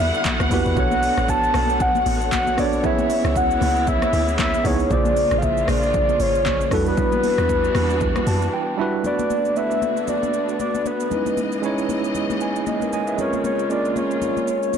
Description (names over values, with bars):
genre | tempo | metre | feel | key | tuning
amapiano | 116 BPM | 4/4 | swing 58% on 16ths | B dorian | A4 = 439 Hz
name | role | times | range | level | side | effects
soft octave-layered synth lead | melody | 0.0-14.8 s | A4 to A5 | -22 LUFS | left 1 dB | chorus, phaser, digital delay
tine electric piano | accompaniment | 0.0-14.8 s | C#3 to A5 | -24 LUFS | right 4 dB | fast stereo tremolo
dark studio string section | sustained chords | 0.0-14.8 s | C#3 to F#5 | -29 LUFS | equal | sidechain pumping
deep log drum bass | bass | 0.0-8.5 s | G#1 to F#2 | -24 LUFS | equal | none
deep house drum kit | drums | 0.1-14.8 s | handclaps, hi-hat, kick drum, rim click, shaker | -26 LUFS | equal | soft clipping on snare
congas | percussion | 0.3-14.8 s | none | -30 LUFS | left 12 dB | none
room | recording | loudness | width
light reverb | blown-out, overdriven recording, overdrive | -18 LUFS | side -8 dB against mid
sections
0.0-9.0 A section; 9.0-14.8 B section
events
drop 0.0-9.0; tine electric piano fill 8.0-9.0, 12.1-13.2; break 8.5-9.0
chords
0.0 Em9; 0.8 Bm9; 2.8 C#m9; 4.9 A#m9; 6.7 Em9; 9.0 Bm7; 11.1 C#m9; 13.2 A#m9